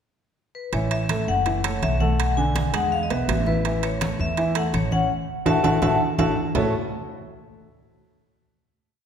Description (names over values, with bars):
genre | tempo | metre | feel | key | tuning
Afro-Cuban jazz | 165 BPM | 4/4 | straight | A major | A4 = 440 Hz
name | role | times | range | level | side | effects
vibraphone with medium hard mallets | melody | 0.6-6.7 s | B4 to A5 | -26 LUFS | left 3 dB | none
warm baby grand piano | accompaniment | 0.7-6.7 s | D3 to E5 | -27 LUFS | right 1 dB | none
upright bass | bass | 0.7-6.7 s | F#1 to E2 | -26 LUFS | right 1 dB | none
congas | percussion | 0.7-6.6 s | none | -28 LUFS | left 2 dB | none
timbales | percussion | 0.7-6.6 s | none | -28 LUFS | right 6 dB | none
room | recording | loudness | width
wet concert hall reverb, RT60 1.9 s | recorded in a church or concert hall | -20 LUFS | side -8 dB against mid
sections
0.0-0.7 pickup bar; 0.7-6.6 A section; 6.6-8.0 final chord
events
band accent 5.1-6.6; drum fill 5.8-6.6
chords
0.0 N.C.; 0.7 A5; 1.5 F#m7; 2.2 Bm7; 2.9 E; 3.6 A5; 6.6 A6